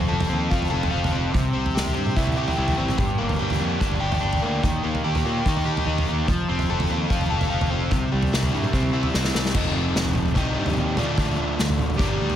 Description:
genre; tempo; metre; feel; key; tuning
indie rock; 146 BPM; 4/4; straight; unclear; A4 = 440 Hz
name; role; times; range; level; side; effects
overdriven semi-hollow guitar; riff; 0.0-12.4 s; G2 to Eb5; -24 LUFS; left 1 dB; spring reverb
picked electric bass; bass; 0.0-12.4 s; F1 to Eb3; -27 LUFS; equal; none
unplugged drum kit; drums; 0.2-12.4 s; crash cymbal, kick drum, snare drum, toms; -25 LUFS; right 1 dB; none
room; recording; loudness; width
light reverb, small room ambience; none; -20 LUFS; side -10 dB against mid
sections
0.0-9.6 A section; 9.6-12.4 B section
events
drum fill 9.1-9.6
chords
0.0 F; 1.3 C; 3.0 Gm; 4.6 Eb; 6.3 F; 7.9 C; 9.6 F7; 10.4 Cm; 11.0 Dm

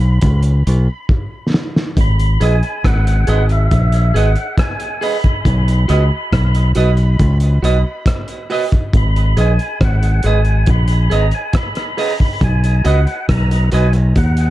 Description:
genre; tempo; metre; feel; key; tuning
dub reggae; 69 BPM; 4/4; straight; unclear; A4 = 445 Hz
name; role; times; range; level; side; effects
fingered electric bass; bass; 0.0-14.5 s; G#1 to D#2; -13 LUFS; equal; none
cloth-damped thuddy drum kit; drums; 0.2-14.5 s; hi-hat, kick drum, rim click, snare drum; -18 LUFS; equal; none
tonewheel organ; melody; 2.0-14.5 s; E5 to B5; -24 LUFS; equal; overdrive, fast rotary speaker, tape echo
semi-hollow electric guitar; accompaniment; 2.4-13.9 s; F#4 to D#5; -22 LUFS; right 4 dB; tape echo
room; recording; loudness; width
small room reverb; dark, warm production; -12 LUFS; side -15 dB against mid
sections
0.0-14.5 A section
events
break 0.0-2.0; drum fill 1.1-2.0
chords
0.0 Bsus2; 2.0 G#m; 5.4 B; 8.9 G#m; 12.4 B

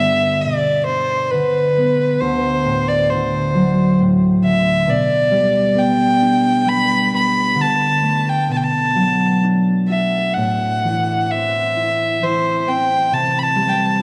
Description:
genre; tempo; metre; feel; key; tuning
celtic folk, Celtic slow air; 66 BPM; 3/4; rubato; G major; A4 = 441 Hz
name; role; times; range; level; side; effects
warm fiddle; melody; 0.0-14.0 s; B4 to B5; -19 LUFS; equal; none
concert harp; accompaniment; 0.0-14.0 s; D2 to F#4; -20 LUFS; equal; none
room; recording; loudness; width
wet church reverb, RT60 3.2 s; dark, warm production; -17 LUFS; mono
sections
0.0-14.0 A section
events
none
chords
0.0 G; 2.2 D7; 4.9 G/B; 7.6 D5; 8.5 Bm; 10.4 Am; 13.1 C

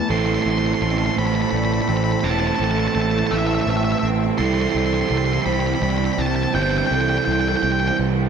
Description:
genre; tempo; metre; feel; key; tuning
post-rock; 56 BPM (dotted quarters); 6/8; straight; A minor; A4 = 439 Hz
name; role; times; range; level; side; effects
octave-fuzz lead guitar; melody; 0.0-8.0 s; E5 to C6; -24 LUFS; left 2 dB; distortion, slapback echo
bright studio string section; sustained chords; 0.0-8.3 s; C4 to A5; -32 LUFS; left 3 dB; none
twangy electric guitar; arpeggios; 0.0-4.4 s; A2 to C4; -32 LUFS; left 5 dB; slapback echo
vibraphone with medium hard mallets; arpeggios; 0.0-8.3 s; A4 to D5; -30 LUFS; right 3 dB; slapback echo
crunchy overdriven guitar; riff; 0.1-8.3 s; A2 to E4; -22 LUFS; right 12 dB; none
fuzz picked electric bass; bass; 0.1-8.3 s; E1 to C2; -22 LUFS; left 1 dB; overdrive
room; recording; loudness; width
light reverb, digital ambience; none; -18 LUFS; side -7 dB against mid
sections
0.1-8.3 A section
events
none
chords
0.1 Am; 4.4 C

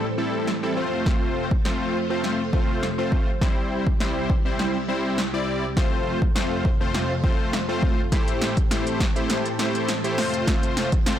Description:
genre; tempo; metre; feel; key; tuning
dance-pop; 102 BPM; 4/4; straight; F major; A4 = 442 Hz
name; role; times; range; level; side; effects
big bright polysynth; accompaniment; 0.0-11.2 s; G3 to D5; -26 LUFS; left 1 dB; chorus, sidechain pumping
string machine, violins; sustained chords; 0.0-11.2 s; C2 to C5; -29 LUFS; right 1 dB; phaser, ensemble chorus, sidechain pumping
deep house drum kit; drums; 0.5-11.2 s; hi-hat, kick drum, snare drum; -23 LUFS; equal; soft clipping on snare
room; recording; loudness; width
light reverb, digital ambience; blown-out, overdriven recording, overdrive; -21 LUFS; side -10 dB against mid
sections
0.0-11.2 A section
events
build-up 0.0-11.2; drum fill 0.0-11.2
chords
0.0 Am7; 0.8 F; 3.4 C; 5.8 F; 8.1 Am7; 10.2 F

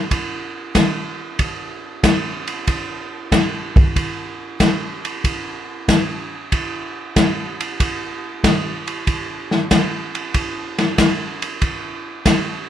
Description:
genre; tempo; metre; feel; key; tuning
jazz; 94 BPM; 4/4; swing 69% on 8ths; none; none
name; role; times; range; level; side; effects
open jazz drum kit; drums; 0.1-12.5 s; hi-hat, kick drum, ride cymbal, snare drum; -18 LUFS; equal; none
room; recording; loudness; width
light reverb; none; -18 LUFS; side -10 dB against mid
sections
0.0-12.7 A section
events
none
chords
none

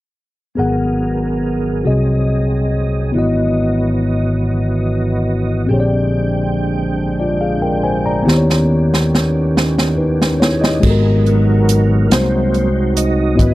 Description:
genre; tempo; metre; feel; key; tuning
slow gospel; 47 BPM (dotted quarters); 6/8; straight; G# minor; A4 = 440 Hz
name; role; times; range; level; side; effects
mellow tine electric piano; accompaniment; 0.6-13.5 s; G#2 to A#5; -17 LUFS; left 2 dB; none
dark French horn section; sustained chords; 0.6-13.5 s; D#3 to D#5; -26 LUFS; right 2 dB; none
tonewheel organ; sustained chords; 0.6-13.5 s; D3 to G5; -21 LUFS; right 3 dB; slow rotary speaker, chorus vibrato
fingered electric bass; bass; 0.6-13.5 s; G#1 to D#2; -18 LUFS; equal; none
swinging big-band drum kit; drums; 8.3-13.5 s; crash cymbal, hi-hat, kick drum, snare drum; -17 LUFS; right 1 dB; none
room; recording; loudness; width
little or no reverb; dry, close 1970s-style studio recording, lossy compression artefacts; -13 LUFS; side -17 dB against mid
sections
0.6-10.8 A section; 10.8-13.5 B section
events
drum fill 8.3-10.8; tonewheel organ solo 10.8-13.5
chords
0.6 G#m9; 1.9 G#7/B#; 3.1 Emaj9/G#; 5.7 A#13; 8.3 D#7b9b13; 10.8 G#m9; 12.1 G#7/B#

